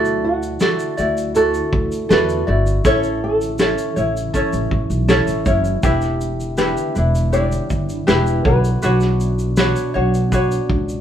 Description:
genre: acoustic pop.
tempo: 80 BPM.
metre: 4/4.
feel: straight.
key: D major.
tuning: A4 = 439 Hz.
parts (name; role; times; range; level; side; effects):
ukulele; accompaniment; 0.0-11.0 s; C#4 to D5; -20 LUFS; equal; none.
shimmering ambient pad; sustained chords; 0.0-11.0 s; B2 to E4; -29 LUFS; left 1 dB; chorus, built-in reverb, phaser.
upright bass; bass; 0.0-11.0 s; E1 to E2; -20 LUFS; equal; none.
vintage brush drum kit; drums; 0.1-11.0 s; kick drum, shaker, snare drum; -21 LUFS; equal; none.
flamenco guitar; melody; 0.2-9.9 s; F#4 to D5; -23 LUFS; equal; none.
room: moderate studio reverb, RT60 0.8 s.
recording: band playing live in one room.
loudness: -15 LUFS.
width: side -10 dB against mid.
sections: 0.0-11.0 A section.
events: none.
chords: 0.0 Dadd9; 2.8 A; 5.8 Em7; 8.5 Bmadd9.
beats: 0.60 1.35 2.10 | 2.85 3.60 4.34 5.09 | 5.84 6.58 7.33 8.08 | 8.83 9.57 10.32.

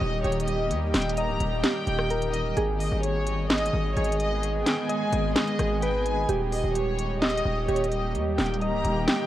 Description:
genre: hip hop, trap.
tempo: 129 BPM.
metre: 4/4.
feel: half-time.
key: G# harmonic minor.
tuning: A4 = 440 Hz.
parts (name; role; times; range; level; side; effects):
clear studio violin section; second line; 0.0-9.3 s; C#5 to A#5; -32 LUFS; left 1 dB; tape echo.
granular cloud pad; sustained chords; 0.0-9.3 s; D#3 to G#4; -32 LUFS; equal; built-in reverb.
soft electric-piano-like synth keys; arpeggios; 0.0-9.3 s; G4 to D#5; -29 LUFS; right 2 dB; chorus, tape echo.
distorted 808-style bass; bass; 0.0-9.1 s; C#1 to D#2; -28 LUFS; equal; distortion.
trap drum kit; drums; 0.2-9.2 s; handclaps, hi-hat, rim click, snare drum; -27 LUFS; equal; none.
room: light reverb.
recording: worn, warbling old tape, cassette tape, warbly pitch drift.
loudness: -23 LUFS.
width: side -13 dB against mid.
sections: 0.0-9.3 A section.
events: none.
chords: 0.0 D#; 2.6 G#m; 6.3 D#.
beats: 0.24 | 0.71 1.17 1.64 2.10 | 2.57 3.03 3.50 3.96 | 4.43 4.89 5.36 5.82 | 6.29 6.75 7.22 7.68 | 8.15 8.62 9.08.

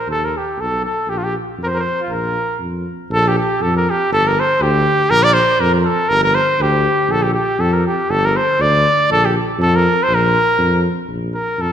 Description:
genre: balkan folk.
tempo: 120 BPM.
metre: 2/4.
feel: swing 55% on 16ths.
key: Bb major.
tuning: A4 = 441 Hz.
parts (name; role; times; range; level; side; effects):
warm trumpet; melody; 0.0-11.7 s; F4 to D5; -15 LUFS; equal; none.
mellow tuba; bass; 0.1-11.7 s; G1 to F2; -19 LUFS; equal; none.
room: wet concert hall reverb, RT60 2.0 s.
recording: recorded in a church or concert hall.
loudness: -14 LUFS.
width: side -9 dB against mid.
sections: 0.0-3.1 A section; 3.1-11.1 B section.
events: none.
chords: 0.1 Baug7; 1.1 Bb5; 4.1 G5; 5.1 Bb5; 6.1 G5; 7.1 Bb5; 8.1 G5; 9.1 Bb5.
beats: | 0.08 0.58 | 1.09 1.59 | 2.09 2.60 | 3.10 3.60 | 4.10 4.60 | 5.10 5.60 | 6.09 6.59 | 7.09 7.59 | 8.09 8.59 | 9.09 9.59 | 10.09 10.59 | 11.09 11.59.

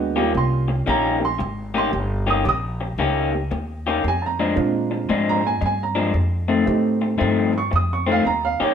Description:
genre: electric blues shuffle.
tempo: 114 BPM.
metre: 4/4.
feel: swing 67% on 8ths.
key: unclear.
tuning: A4 = 440 Hz.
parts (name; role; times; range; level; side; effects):
dark upright piano; accompaniment; 0.0-8.7 s; G3 to Eb6; -22 LUFS; right 5 dB; none.
upright bass; bass; 0.0-8.6 s; G1 to Bb2; -24 LUFS; equal; none.
electric guitar through a small old amp; riff; 0.2-8.7 s; F2 to G4; -22 LUFS; left 4 dB; spring reverb.
room: moderate studio reverb, RT60 0.5 s.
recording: band playing live in one room.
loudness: -18 LUFS.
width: side -8 dB against mid.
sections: 0.0-8.7 A section.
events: none.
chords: 0.0 Eb7; 4.0 Bb7; 6.1 F7.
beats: 0.34 0.87 1.40 | 1.92 2.45 2.98 3.51 | 4.04 4.57 5.09 5.62 | 6.15 6.67 7.20 7.73 | 8.25.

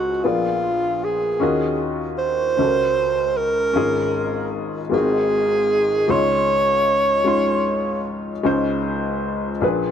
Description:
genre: gospel.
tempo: 51 BPM (dotted quarters).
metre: 6/8.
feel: straight.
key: Db major.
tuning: A4 = 440 Hz.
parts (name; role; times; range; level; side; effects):
warm alto saxophone; melody; 0.0-8.1 s; F4 to Db5; -19 LUFS; right 2 dB; none.
warm upright piano; accompaniment; 0.0-9.9 s; Ab1 to C6; -22 LUFS; left 2 dB; none.
room: light reverb.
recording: none.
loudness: -18 LUFS.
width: side -8 dB against mid.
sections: 0.0-8.5 A section; 8.5-9.9 A section.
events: none.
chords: 0.2 Bb7b9; 1.4 Ebm9; 2.6 Gb/Db; 3.8 Db/Ab; 4.9 Ab13; 6.1 Dbmaj9.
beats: 0.23 | 1.41 2.59 | 3.76 4.93 | 6.11 7.28 | 8.46 9.63.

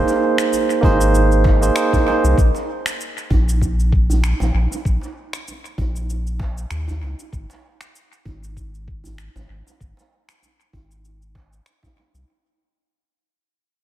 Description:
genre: organic downtempo.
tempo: 97 BPM.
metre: 4/4.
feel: swing 55% on 16ths.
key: unclear.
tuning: A4 = 440 Hz.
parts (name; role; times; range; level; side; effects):
barky tine electric piano; accompaniment; 0.0-2.4 s; Bb3 to C5; -17 LUFS; right 3 dB; sidechain pumping, analog delay.
round analog bass; bass; 0.0-12.2 s; Ab1 to Eb2; -19 LUFS; equal; tube saturation, sidechain pumping.
electronic shaker and finger snaps; drums; 0.1-12.3 s; none; -28 LUFS; equal; overdrive, analog delay.
djembe; percussion; 0.1-12.1 s; none; -30 LUFS; right 2 dB; analog delay.
electronic kick drum; drums; 0.8-11.9 s; none; -19 LUFS; equal; none.
room: light reverb, digital ambience.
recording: echo-heavy mix.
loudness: -16 LUFS.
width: side -12 dB against mid.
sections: 0.0-12.3 A section.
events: fade-out 0.0-12.3.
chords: 0.0 Abadd9; 2.4 N.C..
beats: 0.52 1.14 1.76 | 2.38 3.00 3.61 4.23 | 4.85 5.47 6.09 6.71 | 7.33 7.94 8.56 9.18 | 9.80 10.42 11.04 11.65.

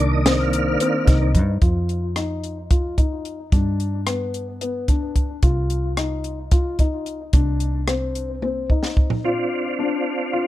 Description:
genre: progressive instrumental, band music in an uneven meter.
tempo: 220 BPM (eighths).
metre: 7/8.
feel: straight.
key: C minor.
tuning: A4 = 440 Hz.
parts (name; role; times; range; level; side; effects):
tonewheel organ; accompaniment; 0.0-1.3, 9.2-10.5 s; Eb3 to F5; -23 LUFS; right 3 dB; chorus vibrato, fast rotary speaker, plate reverb.
dark baby grand piano; arpeggios; 0.0-10.5 s; B3 to F4; -26 LUFS; left 4 dB; ping-pong delay, plate reverb.
fingered electric bass; bass; 0.0-9.2 s; C2 to G2; -23 LUFS; equal; none.
compact cocktail drum kit; drums; 0.3-9.2 s; hi-hat, kick drum, rim click, snare drum, toms; -19 LUFS; equal; none.
room: little or no reverb.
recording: dark, warm production.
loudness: -19 LUFS.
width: side -14 dB against mid.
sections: 0.0-1.6 A section; 1.6-9.2 B section; 9.2-10.5 C section.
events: tonewheel organ solo 0.0-1.6; drum fill 8.4-9.2.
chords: 0.0 Cm7; 1.6 Ebsus2/F; 3.5 G; 5.4 Cm.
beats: 0.26 0.53 0.80 1.07 1.35 | 1.62 1.89 2.16 2.43 2.71 2.98 3.25 | 3.52 3.80 4.07 4.34 4.62 4.89 5.16 | 5.43 5.71 5.98 6.25 6.52 6.80 7.07 | 7.34 7.61 7.88 8.16 8.43 8.70 8.97 | 9.24 9.51 9.79 10.06 10.33.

